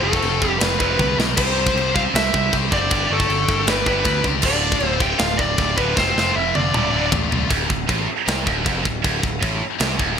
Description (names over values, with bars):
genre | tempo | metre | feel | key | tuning
heavy metal | 157 BPM | 4/4 | straight | D dorian | A4 = 440 Hz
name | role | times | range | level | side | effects
high-gain lead guitar | melody | 0.0-7.1 s | A4 to G5 | -22 LUFS | left 1 dB | distortion, digital delay
nasal lead guitar with a parked wah | second line | 0.0-7.1 s | A3 to G4 | -29 LUFS | right 2 dB | overdrive
heavy high-gain guitar | riff | 0.0-10.2 s | D2 to C5 | -25 LUFS | left 13 dB | distortion
heavy high-gain guitar | riff | 0.0-10.2 s | D2 to C4 | -25 LUFS | right 11 dB | distortion
growling picked electric bass | bass | 0.0-10.2 s | D1 to D2 | -25 LUFS | equal | overdrive
tight metal drum kit | drums | 0.1-10.1 s | china cymbal, crash cymbal, kick drum, snare drum, toms | -22 LUFS | equal | gated reverb
room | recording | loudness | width
moderate plate reverb, RT60 1.6 s, small room ambience | bright 1980s-style digital production | -17 LUFS | side -7 dB against mid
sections
0.0-7.5 A section; 7.5-10.2 B section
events
drum fill 1.0-1.4, 6.0-7.5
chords
0.0 F; 1.4 C; 2.9 G; 4.4 Dm; 6.0 F5; 6.7 Dm